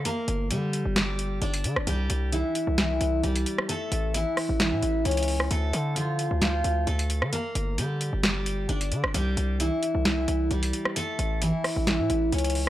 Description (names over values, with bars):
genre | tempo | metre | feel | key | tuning
hip hop, trap | 132 BPM | 4/4 | half-time | unclear | A4 = 436 Hz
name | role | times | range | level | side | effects
picked steel-string acoustic guitar | melody | 0.0-12.7 s | E3 to D5 | -28 LUFS | equal | analog delay
distorted 808-style bass | bass | 0.0-12.7 s | G1 to D3 | -27 LUFS | equal | distortion
booming analog drum machine | drums | 0.1-12.7 s | hi-hat, rim click, snare drum | -28 LUFS | equal | none
room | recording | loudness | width
little or no reverb | dry, gritty hardware recording, cassette tape | -24 LUFS | side -14 dB against mid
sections
0.0-12.7 A section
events
none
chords
0.1 Gm; 1.9 C; 3.7 A; 5.5 Dm; 7.3 Gm; 9.1 C; 11.0 A